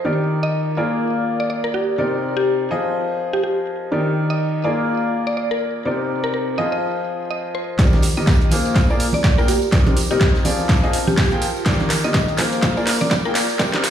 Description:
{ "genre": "piano house", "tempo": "124 BPM", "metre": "4/4", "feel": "swing 58% on 16ths", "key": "Eb major", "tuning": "A4 = 440 Hz", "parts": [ { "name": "mallet-like synth pluck", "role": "melody", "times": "0.0-13.3 s", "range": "G4 to Eb5", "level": "-25 LUFS", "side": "equal", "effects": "chorus, digital delay" }, { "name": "clear upright piano", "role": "riff", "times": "0.0-13.8 s", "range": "C3 to G5", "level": "-21 LUFS", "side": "left 1 dB", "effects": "sidechain pumping, low-pass filter, digital delay" }, { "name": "warbly tape-like pad", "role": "texture", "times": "0.0-13.9 s", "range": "C4 to D6", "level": "-31 LUFS", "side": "right 1 dB", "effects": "chorus, built-in reverb, sidechain pumping" }, { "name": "fingered electric bass", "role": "bass", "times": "7.8-13.7 s", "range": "Bb1 to Bb2", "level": "-33 LUFS", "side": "equal", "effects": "none" }, { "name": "breakbeat sampler-style drum kit", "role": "drums", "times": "7.8-13.9 s", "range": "hi-hat, snare drum", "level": "-34 LUFS", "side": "equal", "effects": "none" }, { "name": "electronic kick drum", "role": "drums", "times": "7.8-13.7 s", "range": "none", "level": "-17 LUFS", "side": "equal", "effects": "none" }, { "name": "garage drum kit", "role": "drums", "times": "7.8-13.9 s", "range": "hi-hat, snare drum", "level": "-24 LUFS", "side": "equal", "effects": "high-pass filter on snare, low-pass filter on snare, high-pass filter on hats, low-pass filter on hats" }, { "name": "tambourine and congas", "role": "percussion", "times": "7.8-13.9 s", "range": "none", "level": "-26 LUFS", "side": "right 3 dB", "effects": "none" } ], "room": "light reverb, digital ambience", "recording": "played on a big sound system in a bare room, large studio reverb, high-pass filter", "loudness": "-17 LUFS", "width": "side -9 dB against mid", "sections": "0.0-7.8 A section; 7.8-13.9 B section", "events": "build-up 7.8-13.9; drum fill 7.8-13.9; filter sweep 7.8-13.9", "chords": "0.0 Ebmaj7; 0.8 Bb7; 2.0 Cm9; 2.7 Fm7; 3.9 Ebmaj7; 4.6 Bb7; 5.9 Cm9; 6.6 Fm7; 7.8 Ebmaj7; 8.5 Bb7; 9.7 Cm9; 10.4 Fm7; 11.7 Ebmaj7; 12.4 Bb7" }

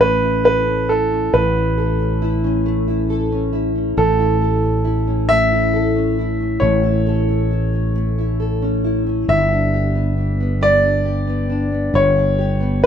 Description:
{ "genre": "six-eight pop ballad", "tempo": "45 BPM (dotted quarters)", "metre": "6/8", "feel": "straight", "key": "unclear", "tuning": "A4 = 438 Hz", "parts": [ { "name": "clear grand piano", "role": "melody", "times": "0.0-12.9 s", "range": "A4 to E5", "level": "-18 LUFS", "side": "equal", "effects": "none" }, { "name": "fingerpicked plugged-in steel-string acoustic guitar", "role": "accompaniment", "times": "0.0-12.9 s", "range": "G3 to A4", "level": "-21 LUFS", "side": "left 1 dB", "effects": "double-tracked left and right" }, { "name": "fretless electric bass", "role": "bass", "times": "0.0-12.9 s", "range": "G1 to A1", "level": "-20 LUFS", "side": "equal", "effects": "none" } ], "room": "light reverb", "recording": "rough home demo mix", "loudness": "-15 LUFS", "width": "side -8 dB against mid", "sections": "0.0-9.3 A section; 9.3-12.9 B section", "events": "none", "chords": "0.0 A; 9.3 G" }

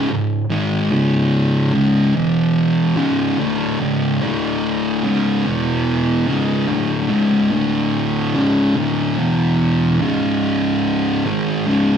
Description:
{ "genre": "metal", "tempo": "73 BPM", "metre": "4/4", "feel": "straight", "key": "C# minor", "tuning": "A4 = 440 Hz", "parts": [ { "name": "thick fuzz guitar", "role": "solo", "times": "0.0-12.0 s", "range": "C#2 to G#3", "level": "-15 LUFS", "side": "equal", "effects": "distortion" } ], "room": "wet large studio reverb, RT60 1.2 s", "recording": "band playing live in one room", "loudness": "-15 LUFS", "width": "side -8 dB against mid", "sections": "0.0-8.3 A section; 8.3-12.0 B section", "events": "none", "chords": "0.0 C#5; 2.1 E5; 3.0 C#5; 4.2 D5; 5.0 C#5; 5.4 E5; 6.3 C#5; 7.5 D5; 8.3 C#5; 9.2 E5; 10.0 C#5" }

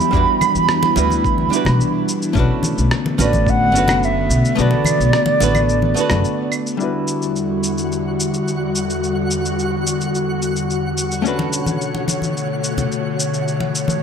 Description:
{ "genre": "sunset chillout", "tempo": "108 BPM", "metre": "4/4", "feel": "straight", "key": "E minor", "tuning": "A4 = 440 Hz", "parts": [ { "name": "mellow wooden flute", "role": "melody", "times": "0.0-6.5 s", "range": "D5 to B5", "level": "-19 LUFS", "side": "right 4 dB", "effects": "ping-pong delay, shimmer reverb" }, { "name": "archtop guitar, miked and amplified", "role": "accompaniment", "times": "0.0-14.0 s", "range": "F#3 to B4", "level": "-23 LUFS", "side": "moving between left 5 dB and right 2 dB", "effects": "auto-pan, low-pass filter, ping-pong delay, shimmer reverb" }, { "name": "airy breathy pad", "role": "sustained chords", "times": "0.0-14.0 s", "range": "E2 to C#5", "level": "-21 LUFS", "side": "left 2 dB", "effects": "chorus" }, { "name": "electronic shaker, claves and rim click", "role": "drums", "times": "0.0-14.0 s", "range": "none", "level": "-24 LUFS", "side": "equal", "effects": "overdrive" }, { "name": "upright bass", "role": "bass", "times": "0.1-6.2 s", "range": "F#1 to E2", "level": "-19 LUFS", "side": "equal", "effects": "none" }, { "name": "electronic kick drum", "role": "drums", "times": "0.1-3.6 s", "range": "none", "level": "-20 LUFS", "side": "equal", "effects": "overdrive" }, { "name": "congas", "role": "percussion", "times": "0.4-6.2, 11.4-14.0 s", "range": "none", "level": "-24 LUFS", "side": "left 2 dB", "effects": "none" }, { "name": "twinkling granular texture", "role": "texture", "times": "7.7-14.0 s", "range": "F#4 to F#5", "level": "-28 LUFS", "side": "equal", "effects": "built-in reverb, shimmer reverb" } ], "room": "moderate plate reverb, RT60 1.6 s, studio reverb", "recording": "none", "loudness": "-16 LUFS", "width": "side -7 dB against mid", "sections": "0.0-6.8 A section; 6.8-14.0 B section", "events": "kick drops out 4.6-6.8", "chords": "0.0 Em9; 2.4 Bm9; 6.8 Em9; 11.2 Bm9" }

